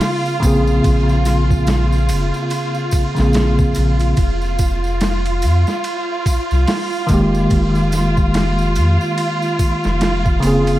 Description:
trip hop; 72 BPM; 4/4; swing 59% on 16ths; F minor; A4 = 439 Hz
bell-like tine electric piano; accompaniment; 0.0-10.8 s; Db3 to Ab4; -18 LUFS; equal; harmonic tremolo, tape echo
rich chamber violin section; sustained chords; 0.0-10.8 s; F4; -23 LUFS; equal
boom bap sampler-style drum kit; drums; 0.0-10.8 s; hi-hat, kick drum, ride cymbal, snare drum; -21 LUFS; equal; overdrive
tambourine; percussion; 0.0-10.8 s; -36 LUFS; right 1 dB; tape echo
wind-like tuned noise texture; texture; 0.0-10.8 s; F4; -29 LUFS; right 5 dB; built-in reverb
soft dub sub bass; bass; 0.4-10.8 s; F1 to F2; -17 LUFS; equal
light reverb, digital ambience; echo-heavy mix, vinyl crackle; -14 LUFS; side -15 dB against mid
0.0-10.8 A section
0.0 Bbm9; 4.2 Fm11
0.01 | 0.84 1.68 2.51 3.34 | 4.17 5.01 5.84 6.67 | 7.51 8.34 9.18 10.01

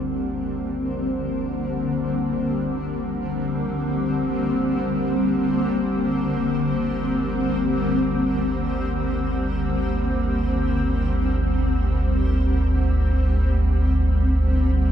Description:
dark ambient drone; free time; A4 = 440 Hz
granular cloud pad; sustained chords; 0.0-14.9 s; D3 to C4; -22 LUFS; left 1 dB; built-in reverb
quartz singing bowl; arpeggios; 0.0-8.4 s; barely audible
deep rumbling drone; drone; 0.0-14.9 s; G1 to D2; -24 LUFS; equal; built-in reverb, lush chorus
wet plate reverb, RT60 2.5 s; dreamy mix soaked in reverb; -20 LUFS; side -9 dB against mid
0.0-14.9 A section
filter sweep on synth drone 0.0-14.9
0.0 Bb69/G
free time

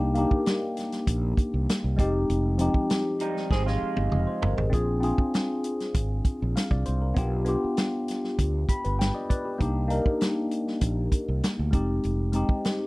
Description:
lush 1970s-style soul; 98 BPM; 4/4; straight; F dorian; A4 = 439 Hz
tine electric piano; accompaniment; 0.0-12.9 s; F3 to B5; -27 LUFS; left 1 dB; phaser
fretless electric bass; bass; 0.0-12.5 s; F1 to D2; -27 LUFS; equal
vintage drum kit; drums; 0.2-12.8 s; hi-hat, kick drum, snare drum, toms; -26 LUFS; equal
electric guitar through a small old amp; riff; 3.2-4.5 s; G3 to Ab4; -30 LUFS; right 4 dB; wide subtle chorus
little or no reverb; dry, close 1970s-style studio recording; -24 LUFS; side -22 dB against mid
0.0-4.7 A section; 4.7-12.9 A section
drum fill 3.5-4.7; tine electric piano fill 8.4-9.6
0.0 Cm7; 2.0 Fm7; 4.7 Bb7; 7.2 G7/B; 9.6 Cm7; 11.7 Fm7
0.47 1.08 1.69 | 2.29 2.90 3.51 4.12 | 4.73 5.34 5.95 6.55 | 7.16 7.77 8.38 8.99 | 9.60 10.21 10.82 11.43 | 12.04 12.65

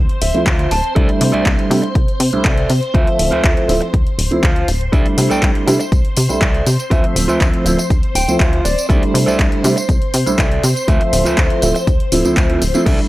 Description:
filtered disco house; 121 BPM; 4/4; straight; A4 = 440 Hz
string machine, full ensemble; sustained chords; 0.0-13.1 s; C5 to C6; -25 LUFS; left 1 dB; phaser, ensemble chorus, vintage 12-bit sampler grit, sidechain pumping, low-pass filter
plucky analog bass; bass; 0.0-13.0 s; D1 to C3; -19 LUFS; equal; sidechain pumping, low-pass filter
house drum kit; drums; 0.1-13.1 s; crash cymbal, handclaps, hi-hat, tambourine; -22 LUFS; equal; sidechain pumping on hats, sidechain pumping on perc, sidechain pumping on cymbals
mellow electric guitar; riff; 0.2-13.0 s; F4 to A5; -21 LUFS; right 1 dB; vintage 12-bit sampler grit, sidechain pumping, low-pass filter
warm baby grand piano; accompaniment; 0.3-13.1 s; F3 to E5; -18 LUFS; right 1 dB; phaser, sidechain pumping, low-pass filter
electronic kick drum; drums; 0.5-13.0 s; -15 LUFS; equal
digital ambience; dry, gritty hardware recording; -12 LUFS; side -17 dB against mid
0.0-13.1 A section
clean electric guitar fill 0.0-1.0, 7.9-8.9
0.0 Dm9; 1.0 C69; 2.9 Dm9; 4.9 C69; 6.9 Dm9; 8.9 C69; 10.9 Dm9
0.47 | 0.96 1.46 1.96 2.45 | 2.95 3.44 3.94 4.43 | 4.93 5.43 5.92 6.42 | 6.91 7.41 7.91 8.40 | 8.90 9.39 9.89 10.38 | 10.88 11.38 11.87 12.37 | 12.86

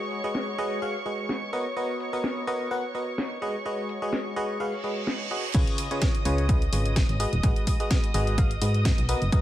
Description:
piano house; 127 BPM; 4/4; swing 55% on 16ths; G# dorian; A4 = 439 Hz
muted studio violin section; sustained chords; 0.0-9.4 s; C#5 to D#6; -35 LUFS; left 1 dB; sidechain pumping
barking FM electric piano; riff; 0.0-9.4 s; C#3 to F#5; -30 LUFS; equal; chorus, tremolo, sidechain pumping, tape echo
garage drum kit; drums; 0.1-9.4 s; crash cymbal, hi-hat, snare drum; -33 LUFS; equal; low-pass filter on hats, low-pass filter on snare, low-pass filter on cymbals
reverse cymbal; sound effects; 4.8-5.5 s; -34 LUFS; right 6 dB
solid FM bass; bass; 5.5-9.4 s; D#1 to G#2; -26 LUFS; equal; sidechain pumping
electronic kick drum; drums; 5.5-9.4 s; -24 LUFS; equal
light reverb, digital ambience; -24 LUFS; side -13 dB against mid
0.0-5.5 A section; 5.5-9.4 B section
reverse cymbal 4.8-5.5; drop 5.5-9.4
0.0 G#m7; 1.5 Bmaj7; 3.4 G#m7; 5.5 C#7; 7.2 G#m7
0.35 0.82 1.29 | 1.76 2.24 2.71 3.18 | 3.65 4.13 4.60 5.07 | 5.54 6.02 6.49 6.96 | 7.43 7.91 8.38 8.85 | 9.32

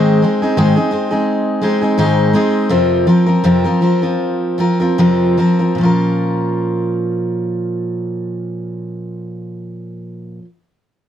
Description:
pop; 74-87 BPM; 4/4; swing 55% on 16ths; Bb minor; A4 = 443 Hz
picked steel-string acoustic guitar; accompaniment; 0.0-10.5 s; F2 to Bb4; -14 LUFS; equal
moderate studio ambience, RT60 0.5 s; dark, warm production; -13 LUFS; side -10 dB against mid
0.0-5.8 A section; 5.8-9.0 B section
slowing down 0.0-5.8
0.0 Ab; 2.7 Fsus4; 5.8 Bbm
0.58 1.28 1.99 | 2.71 3.45 4.20 4.98 | 5.78 6.59 7.41 8.22

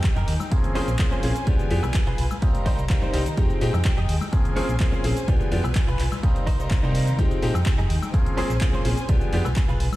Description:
filtered disco house; 126 BPM; 4/4; straight; F minor; A4 = 441 Hz
rich symphonic string section; sustained chords; 0.0-10.0 s; Ab3 to Bb5; -34 LUFS; left 1 dB; sidechain pumping, low-pass filter
direct-recorded clean electric guitar; riff; 0.0-9.9 s; Db4 to Eb5; -33 LUFS; right 2 dB; ensemble chorus, sidechain pumping, low-pass filter
electronic kick drum; drums; 0.0-9.7 s; -22 LUFS; equal
punchy analog drum machine; drums; 0.0-10.0 s; handclaps, hi-hat, shaker, woodblock; -34 LUFS; equal; sidechain pumping on hats, sidechain pumping on cymbals, sidechain pumping on perc
tambourine and congas; percussion; 0.0-10.0 s; -36 LUFS; left 4 dB
hollow-body short-scale fingered electric bass; bass; 0.2-9.9 s; Bb1 to C3; -24 LUFS; equal; tube saturation, sidechain pumping, low-pass filter
bright grand piano; accompaniment; 0.5-9.4 s; F3 to C5; -29 LUFS; left 1 dB; phaser, sidechain pumping, low-pass filter
little or no reverb; played on a big sound system in a bare room, stone room reverb; -20 LUFS; side -17 dB against mid
0.0-10.0 A section
0.0 Fm9; 0.5 Bbm9; 1.5 G7b9; 2.4 Cm7; 3.4 Fm9; 4.3 Bbm9; 5.3 G7b9; 6.2 Cm7; 7.2 Fm9; 8.1 Bbm9; 9.1 G7b9
0.04 0.52 0.99 | 1.47 1.95 2.42 2.90 | 3.37 3.85 4.33 4.80 | 5.28 5.75 6.23 6.71 | 7.18 7.66 8.14 8.61 | 9.09 9.56

